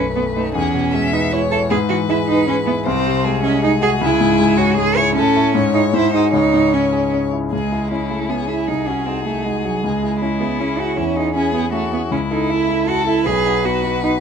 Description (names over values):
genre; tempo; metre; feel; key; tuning
quick classical-period movement for piano trio; 156 BPM; 3/4; straight; C# minor; A4 = 442 Hz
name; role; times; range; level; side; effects
warm violin; melody; 0.0-14.2 s; C#4 to E5; -22 LUFS; left 6 dB; none
rich cello; second line; 0.0-14.1 s; F#3 to C#5; -19 LUFS; right 6 dB; none
clear concert grand piano; accompaniment; 0.0-14.2 s; B1 to D#5; -19 LUFS; left 3 dB; none
room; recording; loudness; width
light reverb; close, detailed microphones; -15 LUFS; side -7 dB against mid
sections
0.0-7.5 A section; 7.5-14.2 B section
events
none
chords
0.0 B7; 0.6 E; 1.7 E/G#; 2.9 G#7/B#; 4.0 C#m; 5.2 A; 5.6 C#m/G#; 5.9 G#7; 6.3 C#m; 8.7 G#7/B#; 9.8 C#m; 11.0 C#m/E; 12.1 A/C#; 13.3 B